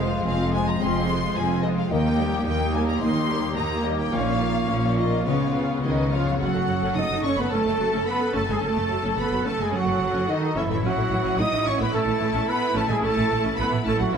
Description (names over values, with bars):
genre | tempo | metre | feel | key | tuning
cinematic | 108 BPM | 4/4 | straight | F# dorian from 6.4 s | A4 = 440 Hz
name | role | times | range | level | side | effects
rich symphonic violin section | melody | 0.0-14.2 s | Eb5 to D#6 | -31 LUFS | left 4 dB | none
mellow concert flute | second line | 0.0-6.1 s | C6 to Eb6 | -35 LUFS | left 2 dB | none
warm clarinet | second line | 0.0-6.1 s | Ab3 to Cb4 | -31 LUFS | equal | none
warm symphonic violin section | second line | 0.0-14.2 s | F4 to D#6 | -33 LUFS | left 3 dB | none
rich symphonic viola section | accompaniment | 0.0-14.2 s | E3 to A4 | -30 LUFS | equal | none
concert harp | arpeggios | 0.0-14.2 s | F#2 to C#5 | -32 LUFS | left 8 dB | none
rich symphonic cello section | bass | 0.0-14.2 s | Eb2 to D#4 | -27 LUFS | right 2 dB | none
rich symphonic double bass section | bass | 0.0-14.2 s | F1 to Eb2 | -28 LUFS | right 3 dB | none
clear French horn section | sustained chords | 0.8-5.5 s | Ab3 to Eb4 | -34 LUFS | left 2 dB | none
mellow trumpet section | stabs | 5.8-14.2 s | Eb4 to D#5 | -26 LUFS | right 2 dB | none
room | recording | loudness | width
wet scoring stage reverb, RT60 1.7 s | none | -21 LUFS | side -7 dB against mid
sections
0.0-6.4 A section; 6.4-14.2 B section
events
none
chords
0.0 Fm; 1.9 Eb; 4.1 Bbm; 5.3 Db7; 6.4 F#m; 10.8 A